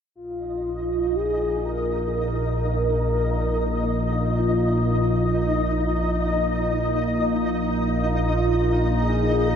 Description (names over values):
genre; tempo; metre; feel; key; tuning
dark ambient drone; free time; none; none; unclear; A4 = 440 Hz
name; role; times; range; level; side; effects
analog drone; drone; 0.5-9.6 s; Bb1 to Bb2; -24 LUFS; equal; chorus, phaser
flickering grainy texture; texture; 0.6-9.6 s; Eb4 to Eb5; -27 LUFS; left 1 dB; built-in reverb
mellow horn-like synth lead; melody; 0.2-9.6 s; F4 to Bb4; -26 LUFS; equal; analog chorus, ping-pong delay
dark analog pad; sustained chords; 0.4-9.6 s; F4 to Bb5; -35 LUFS; right 1 dB; chorus, phaser
room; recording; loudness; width
wet huge ambient reverb, RT60 8.3 s; none; -20 LUFS; side -8 dB against mid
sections
0.2-9.6 A section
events
none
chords
0.2 Bb5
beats
free time